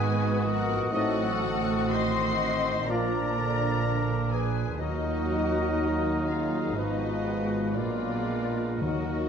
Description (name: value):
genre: classical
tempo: 55-64 BPM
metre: 4/4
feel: rubato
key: unclear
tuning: A4 = 440 Hz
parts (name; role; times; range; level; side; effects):
- muted symphonic violin section; melody; 0.0-9.3 s; D4 to Gb4; -37 LUFS; left 5 dB; none
- bright clarinet; second line; 0.0-9.3 s; D4 to C5; -38 LUFS; left 1 dB; none
- bright large flute ensemble; second line; 0.0-9.3 s; F4 to Eb5; -36 LUFS; left 3 dB; none
- mellow oboe; second line; 0.0-9.3 s; Bb4 to Eb5; -37 LUFS; equal; none
- muted studio violin section; second line; 0.0-9.3 s; D5 to C6; -34 LUFS; left 5 dB; none
- muted symphonic viola section; accompaniment; 0.0-9.3 s; D3 to Eb4; -36 LUFS; right 2 dB; none
- warm bassoon; accompaniment; 0.0-9.3 s; F3 to C4; -37 LUFS; left 1 dB; none
- muted studio double bass section; bass; 0.0-9.3 s; Ab1 to Eb2; -33 LUFS; right 4 dB; none
- muted symphonic cello section; bass; 0.0-9.3 s; Eb2 to Bb2; -33 LUFS; right 3 dB; none
- dark trombone section; sustained chords; 0.9-9.3 s; Ab2 to A3; -38 LUFS; right 3 dB; none
- warm French horn section; sustained chords; 0.9-9.3 s; Bb3 to F4; -34 LUFS; left 3 dB; none
- clear trumpet; stabs; 0.9-9.3 s; Bb4 to Eb5; -36 LUFS; right 1 dB; none
- timpani; percussion; 8.8-9.3 s; Eb3; -33 LUFS; left 2 dB; none
room: wet recital hall reverb, RT60 1.2 s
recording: dark, warm production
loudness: -25 LUFS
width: side -7 dB against mid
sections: 0.0-9.3 A section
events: none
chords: 0.0 Abm7; 0.9 Adim7; 2.9 Bb; 4.8 Ebm; 6.8 Fdim/Ab; 7.8 Bb7b9